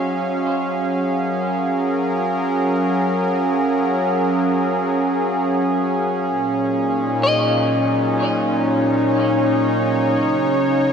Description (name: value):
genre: ambient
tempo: free time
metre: none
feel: none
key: Gb major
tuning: A4 = 435 Hz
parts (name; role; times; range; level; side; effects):
- warm analog pad; sustained chords; 0.0-10.9 s; Bb2 to F5; -17 LUFS; equal; chorus
- electric guitar at the edge of break-up; arpeggios; 0.0-10.5 s; Db5 to Eb5; -25 LUFS; left 3 dB; diffuse ambient delay
- analog drone; drone; 0.0-10.9 s; Gb3 to Gb4; -31 LUFS; left 1 dB; chorus
room: wet lush hall reverb, RT60 2.7 s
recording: cassette tape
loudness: -17 LUFS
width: side -7 dB against mid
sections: 0.0-10.9 A section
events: none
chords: 0.0 Gbmaj9; 6.3 Bbm7; 10.1 Db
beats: free time